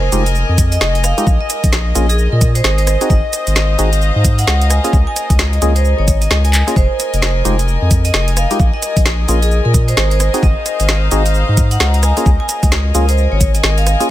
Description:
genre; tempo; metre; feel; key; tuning
UK garage, two-step garage; 131 BPM; 4/4; swing 61% on 16ths; unclear; A4 = 440 Hz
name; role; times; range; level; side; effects
vibraphone with hard mallets; melody; 0.0-14.0 s; Ab4 to Ab5; -22 LUFS; right 1 dB; ping-pong delay
warm analog pad; sustained chords; 0.0-14.1 s; Eb5; -26 LUFS; left 1 dB; chorus, sidechain pumping
saturated sub bass; bass; 0.0-14.0 s; F1 to Bb2; -14 LUFS; equal; sidechain pumping
rich chamber string section; texture; 0.0-14.1 s; Bb4 to Bb5; -24 LUFS; left 3 dB; sidechain pumping
percussive organ stab; stabs; 0.1-14.1 s; Ab3 to Ab4; -23 LUFS; left 1 dB; chorus, ping-pong delay
garage drum kit; drums; 0.1-14.1 s; handclaps, hi-hat, rim click, shaker, snare drum; -19 LUFS; right 1 dB; overdrive
electronic kick drum; drums; 0.6-13.5 s; none; -13 LUFS; equal; overdrive
room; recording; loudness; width
digital ambience; none; -11 LUFS; side -14 dB against mid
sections
0.0-14.1 A section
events
drum fill 6.5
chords
0.0 Fm9; 1.3 Bbm7; 2.9 Ab7; 4.7 Db6; 6.8 Fm9; 8.6 Bbm7; 10.2 Ab7; 12.0 Db6

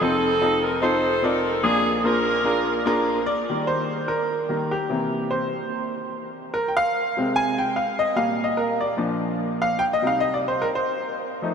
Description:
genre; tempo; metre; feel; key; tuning
gospel; 147 BPM; 4/4; swing 57% on 8ths; Eb major; A4 = 440 Hz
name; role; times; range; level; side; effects
clear saxophone section; melody; 0.0-3.1 s; C4 to C5; -23 LUFS; right 1 dB; ping-pong delay
clear grand piano; accompaniment; 0.0-11.5 s; F1 to Ab5; -22 LUFS; equal; none
room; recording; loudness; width
wet huge ambient reverb, RT60 6.4 s; dreamy mix soaked in reverb; -20 LUFS; side -6 dB against mid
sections
0.0-3.3 A section; 3.3-11.5 B section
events
grand piano solo 3.3-11.5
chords
0.0 F7; 1.6 Bb7; 3.3 Eb; 4.9 C7; 6.5 Fm; 8.2 Bb6; 9.0 Bb; 9.8 Cm

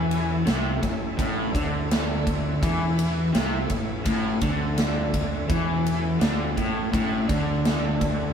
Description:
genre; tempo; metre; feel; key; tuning
blues rock power trio and southern rock; 83 BPM; 4/4; straight; A major; A4 = 441 Hz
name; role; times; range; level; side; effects
overdriven tonewheel organ; sustained chords; 0.0-8.3 s; E4 to E5; -38 LUFS; right 4 dB; chorus vibrato, fast rotary speaker
raw garage guitar; riff; 0.0-8.3 s; A2 to E3; -25 LUFS; left 1 dB; overdrive, harmonic tremolo
fuzz fingered electric bass; bass; 0.0-8.3 s; A1 to E2; -30 LUFS; equal; overdrive
big rock drum kit; drums; 0.1-8.2 s; kick drum, ride cymbal, snare drum; -26 LUFS; equal; none
room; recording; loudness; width
moderate studio reverb, RT60 0.8 s; band playing live in one room; -22 LUFS; side -7 dB against mid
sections
0.0-8.3 A section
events
none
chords
0.0 A

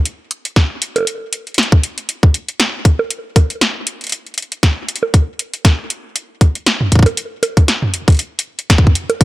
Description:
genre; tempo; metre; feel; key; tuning
IDM; 118 BPM; 4/4; swing 56% on 16ths; none; none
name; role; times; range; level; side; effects
electro analog drum machine; drums; 0.1-9.2 s; bongos, hi-hat, snare drum, toms; -16 LUFS; right 1 dB; none
electronic kick drum; drums; 0.6-9.2 s; none; -9 LUFS; equal; none
room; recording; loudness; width
little or no reverb; dry, gritty hardware recording, transformer saturation; -13 LUFS; side -18 dB against mid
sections
0.0-9.2 A section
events
none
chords
none

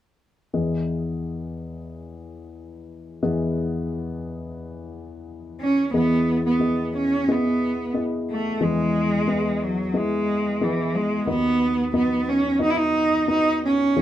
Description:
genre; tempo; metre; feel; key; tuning
acoustic folk-pop ballad; 90 BPM; 4/4; straight; E major; A4 = 441 Hz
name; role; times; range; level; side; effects
dark baby grand piano; accompaniment; 0.5-14.0 s; D#2 to D#5; -26 LUFS; left 2 dB; none
warm cello; melody; 5.6-14.0 s; E3 to E4; -21 LUFS; right 1 dB; none
room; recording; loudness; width
light reverb; dark, warm production; -20 LUFS; side -12 dB against mid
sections
0.5-5.9 A section; 5.9-14.0 B section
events
none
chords
0.5 Emaj7; 11.3 B/D#

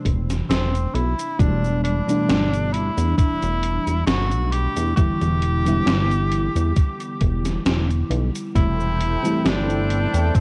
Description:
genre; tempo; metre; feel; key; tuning
vaporwave; 67 BPM; 4/4; swing 54% on 16ths; E minor; A4 = 439 Hz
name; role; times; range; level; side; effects
FM electric piano with soft pad layer; accompaniment; 0.0-10.4 s; B2 to E4; -28 LUFS; equal; tremolo, analog chorus, cassette tape
chorused synth bass; bass; 0.1-10.4 s; E1 to E2; -24 LUFS; equal; none
electronic kick drum; drums; 0.1-10.4 s; none; -20 LUFS; equal; none
gated 80s digital drum machine; drums; 0.1-10.4 s; cabasa, hi-hat, snare drum; -28 LUFS; equal; gated reverb, gated reverb snare
clear tenor saxophone; melody; 0.5-10.4 s; C4 to G4; -29 LUFS; equal; tape echo
lush unison pad; sustained chords; 8.6-10.4 s; E4 to G5; -33 LUFS; equal; chorus
room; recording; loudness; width
little or no reverb; worn, warbling old tape, cassette tape, warbly pitch drift; -21 LUFS; mono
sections
0.0-10.4 A section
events
none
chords
0.0 D9sus4/E; 1.4 G69/E; 5.0 Em7; 8.6 Am7/E

